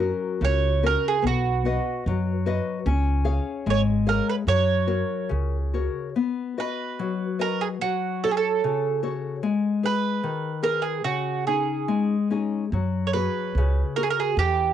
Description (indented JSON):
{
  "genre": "fado-style ballad",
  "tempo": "73 BPM",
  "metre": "2/4",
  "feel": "rubato",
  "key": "F# major, B major from 6.2 s",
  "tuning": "A4 = 440 Hz",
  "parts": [
    { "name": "nylon-string guitar", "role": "accompaniment", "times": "0.0-14.7 s", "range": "C#3 to E#5", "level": "-26 LUFS", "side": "left 6 dB", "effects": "cassette tape" },
    { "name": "upright bass", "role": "bass", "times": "0.0-5.9, 12.7-14.7 s", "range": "G#1 to F#2", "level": "-24 LUFS", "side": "right 1 dB", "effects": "none" },
    { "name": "mandolin", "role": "melody", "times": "0.4-14.7 s", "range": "F#4 to C#5", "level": "-25 LUFS", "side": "right 8 dB", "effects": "cassette tape" }
  ],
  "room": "moderate small room reverb, RT60 0.6 s",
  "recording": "home recording on cassette",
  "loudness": "-22 LUFS",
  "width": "side -10 dB against mid",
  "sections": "0.0-6.2 A section; 6.2-14.7 B section",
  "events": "none",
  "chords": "0.0 F#; 1.2 B; 2.9 C#; 4.5 F#; 6.2 B; 7.8 F#m; 9.4 G#madd9; 11.1 C#sus2; 12.7 F#add9",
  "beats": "0.40 | 1.23 2.05 | 2.86 3.66 | 4.47 5.31 | 6.17 7.01 | 7.83 8.64 | 9.44 10.23 | 11.05 11.89 | 12.72 13.55 | 14.37"
}